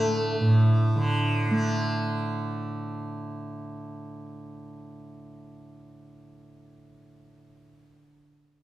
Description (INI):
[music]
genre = indian classical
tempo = 148 BPM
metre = 4/4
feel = straight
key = unclear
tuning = A4 = 440 Hz
[part]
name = tanpura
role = drone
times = 0.0-8.1 s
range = A2 to A3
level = -25 LUFS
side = right 1 dB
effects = none
[sound]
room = moderate recital hall reverb, RT60 1.7 s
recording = minimal, uncompressed stereo recording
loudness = -23 LUFS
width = side -15 dB against mid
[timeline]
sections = 0.0-2.0 A section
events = none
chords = none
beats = | 0.40 0.80 1.21 1.61